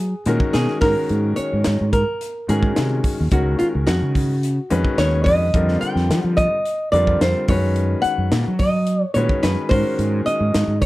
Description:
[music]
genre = electric jazz fusion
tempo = 108 BPM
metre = 4/4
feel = straight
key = unclear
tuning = A4 = 440 Hz
[part]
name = nylon-string guitar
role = melody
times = 0.0-10.9 s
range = F4 to G5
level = -22 LUFS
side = equal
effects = slapback echo
[part]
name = fretless electric bass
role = bass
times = 0.0-10.9 s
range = Db2 to Gb3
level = -20 LUFS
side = equal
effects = lush chorus
[part]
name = bright concert grand piano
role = accompaniment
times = 0.3-10.7 s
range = D3 to Cb5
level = -24 LUFS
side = left 2 dB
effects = none
[part]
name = crisp fusion drum kit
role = drums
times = 0.3-10.9 s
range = hi-hat, kick drum, snare drum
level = -23 LUFS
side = equal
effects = none
[sound]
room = little or no reverb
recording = none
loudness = -16 LUFS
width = side -17 dB against mid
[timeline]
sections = 0.0-10.9 A section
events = none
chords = 0.0 Gbsus24; 0.8 Ab9sus4; 3.3 Db9sus4; 5.5 F9sus4; 7.5 Gbsus24; 9.7 Ab9sus4

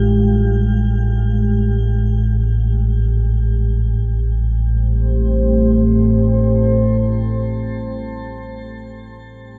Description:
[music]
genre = dark ambient drone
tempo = free time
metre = none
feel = none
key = A minor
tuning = A4 = 444 Hz
[part]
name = deep dark ambient pad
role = sustained chords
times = 0.0-8.3 s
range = Ab3 to F5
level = -23 LUFS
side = equal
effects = chorus, built-in reverb, shimmer reverb
[part]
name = deep rumbling drone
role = drone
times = 0.0-8.0 s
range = A1 to A2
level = -19 LUFS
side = equal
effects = built-in reverb
[sound]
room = wet cathedral reverb, RT60 7.2 s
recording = in a vast, echoing space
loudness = -17 LUFS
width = mono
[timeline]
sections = 0.0-3.9 A section; 3.9-8.7 B section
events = filter sweep on synth drone 0.0-3.9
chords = 0.0 Fmadd9; 3.9 Am7

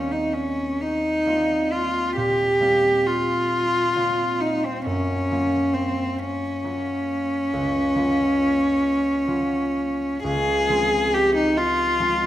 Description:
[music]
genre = classical, impressionist duo for cello and harp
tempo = 41-48 BPM (dotted quarters)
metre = 12/8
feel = rubato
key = unclear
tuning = A4 = 441 Hz
[part]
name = warm cello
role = melody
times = 0.0-12.3 s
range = C4 to Ab4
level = -20 LUFS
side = equal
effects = none
[part]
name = concert harp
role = accompaniment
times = 0.0-12.3 s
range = Db2 to F4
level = -28 LUFS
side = right 1 dB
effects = none
[sound]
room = wet recital hall reverb, RT60 1.6 s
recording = none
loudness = -20 LUFS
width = side -13 dB against mid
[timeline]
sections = 0.0-12.3 A section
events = none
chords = 0.0 Eb69; 4.9 Gbmaj7; 10.2 Dbmaj7

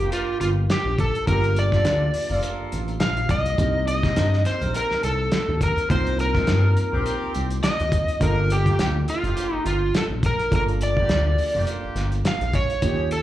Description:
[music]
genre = straight-eighth soul blues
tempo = 104 BPM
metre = 4/4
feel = swing 56% on 16ths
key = G minor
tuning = A4 = 440 Hz
[part]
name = overdriven slide guitar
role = melody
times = 0.0-13.2 s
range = F4 to F5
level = -24 LUFS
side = equal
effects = slapback echo
[part]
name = tine electric piano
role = accompaniment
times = 0.0-13.2 s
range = Bb3 to Bb4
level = -32 LUFS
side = right 5 dB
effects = slapback echo
[part]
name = clear horn section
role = sustained chords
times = 0.0-13.1 s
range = Bb3 to Bb4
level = -35 LUFS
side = equal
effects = none
[part]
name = smooth gliding synth bass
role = bass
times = 0.0-13.2 s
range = F1 to G2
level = -23 LUFS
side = equal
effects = none
[part]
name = cloth-damped thuddy drum kit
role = drums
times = 0.0-13.2 s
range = hi-hat, kick drum, snare drum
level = -26 LUFS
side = equal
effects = none
[sound]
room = studio ambience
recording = live gig heard through the venue's PA, club reverb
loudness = -20 LUFS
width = side -13 dB against mid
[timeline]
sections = 0.0-13.2 A section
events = none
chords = 0.0 Gm7; 3.6 Cm7; 8.2 Gm7

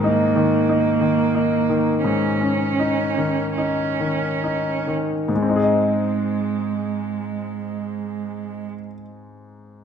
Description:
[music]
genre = classical, slow romantic movement for piano quartet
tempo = 33-47 BPM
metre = 4/4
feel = rubato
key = unclear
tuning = A4 = 440 Hz
[part]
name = rich cello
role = second line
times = 0.0-8.7 s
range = G#3 to C#4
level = -23 LUFS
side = right 6 dB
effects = none
[part]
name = bright grand piano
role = accompaniment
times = 0.0-9.8 s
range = G#2 to D#5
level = -21 LUFS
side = left 2 dB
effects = none
[sound]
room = wet scoring stage reverb, RT60 1.4 s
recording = none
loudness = -19 LUFS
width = side -7 dB against mid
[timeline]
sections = 0.0-5.3 A section; 5.3-9.8 B section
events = slowing down 0.0-5.3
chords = 0.0 D#7(no3)/G#; 5.3 G#

